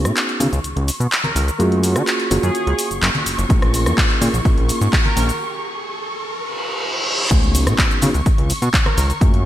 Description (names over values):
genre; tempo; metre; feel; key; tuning
filtered disco house; 126 BPM; 4/4; straight; Db mixolydian; A4 = 437 Hz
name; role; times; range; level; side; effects
reed electric piano; accompaniment; 0.0-9.5 s; Bb3 to Bb4; -23 LUFS; right 1 dB; phaser, sidechain pumping, low-pass filter
rich studio violin section; sustained chords; 0.0-9.5 s; Db6; -29 LUFS; right 1 dB; sidechain pumping, low-pass filter
fat analog bass; bass; 0.0-9.5 s; Gb1 to Eb3; -19 LUFS; equal; sidechain pumping, low-pass filter
riser, reverse cymbal and impact; sound effects; 2.2-9.2 s; none; -26 LUFS; equal; none
punchy analog drum machine; drums; 0.1-9.4 s; cabasa, crash cymbal, handclaps, hi-hat, rim click; -21 LUFS; equal; sidechain pumping on perc, high-pass filter on perc, high-pass filter on snare, sidechain pumping on hats, high-pass filter on hats, sidechain pumping on cymbals, high-pass filter on cymbals, high-pass filter on room, gated reverb
tambourine and congas; percussion; 0.1-9.3 s; none; -29 LUFS; left 2 dB; sidechain pumping on perc, low-pass filter on perc
analog synth brass; melody; 1.2-5.2, 8.9-9.0 s; Ab4 to Bb4; -28 LUFS; right 1 dB; chorus, sidechain pumping, low-pass filter, ping-pong delay
electronic kick drum; drums; 3.5-9.3 s; none; -16 LUFS; equal; none
room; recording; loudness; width
light reverb; bright 1980s-style digital production; -15 LUFS; side -12 dB against mid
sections
0.0-7.3 A section; 7.3-9.5 B section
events
build-up 0.0-7.3; filter sweep 0.0-7.3; riser 2.2-7.3; break 5.4-7.3; reverse cymbal 6.4-7.3; drop 7.3-9.5; impact 7.3-9.2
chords
0.0 Db9sus4; 1.6 Gbmaj9; 3.5 Bbm7; 5.4 N.C.; 7.3 Db9sus4